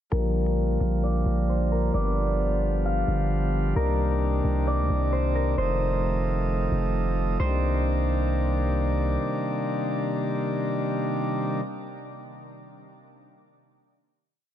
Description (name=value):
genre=hip hop, atmospheric cloud-rap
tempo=132 BPM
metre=4/4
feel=half-time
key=C dorian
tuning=A4 = 439 Hz
part: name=concert harp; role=melody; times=0.1-9.4 s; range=Bb4 to F5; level=-30 LUFS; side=equal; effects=low-pass filter, ping-pong delay
part: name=pipe organ, principal chorus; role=sustained chords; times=0.1-11.6 s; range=C3 to F4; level=-27 LUFS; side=equal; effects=low-pass filter
part: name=long sustained 808-style bass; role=bass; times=0.1-9.2 s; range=F1 to D2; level=-25 LUFS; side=equal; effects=none
room=light reverb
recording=none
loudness=-23 LUFS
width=side -10 dB against mid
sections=0.1-7.4 breakdown; 7.4-11.0 final chord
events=filter sweep 0.1-7.4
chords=0.1 Bb6; 1.9 G7; 3.8 Cm9; 5.6 F7; 7.4 Cm9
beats=| 0.12 0.58 1.03 1.49 | 1.94 2.40 2.85 3.31 | 3.76 4.21 4.67 5.12 | 5.58 6.03 6.49 6.94 | 7.40 7.85 8.30 8.76 | 9.21 9.67 10.12 10.58